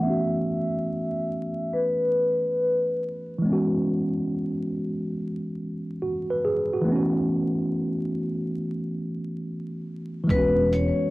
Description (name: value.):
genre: lo-fi hip hop.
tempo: 70 BPM.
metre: 4/4.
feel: swing 65% on 16ths.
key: unclear.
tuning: A4 = 441 Hz.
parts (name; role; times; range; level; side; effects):
vibraphone with medium hard mallets; melody; 0.0-3.0, 10.3-11.1 s; B4 to E5; -24 LUFS; left 1 dB; low-pass filter, cassette tape, plate reverb.
tine electric piano; accompaniment; 0.0-11.1 s; E3 to B4; -25 LUFS; equal; medium stereo tremolo, cassette tape, low-pass filter.
upright bass; bass; 10.3-10.9 s; E1; -28 LUFS; equal; transformer saturation.
dusty soul sampler-style drum kit; drums; 10.3-11.0 s; hi-hat, kick drum; -26 LUFS; equal; vintage 12-bit sampler grit, cassette tape.
room: wet small room reverb, RT60 0.5 s.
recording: home recording on cassette, vinyl crackle.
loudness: -23 LUFS.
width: side -20 dB against mid.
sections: 0.0-10.3 A section.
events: filter sweep 0.0-10.3.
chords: 0.0 A69; 3.4 E69; 6.9 A69; 10.3 E69.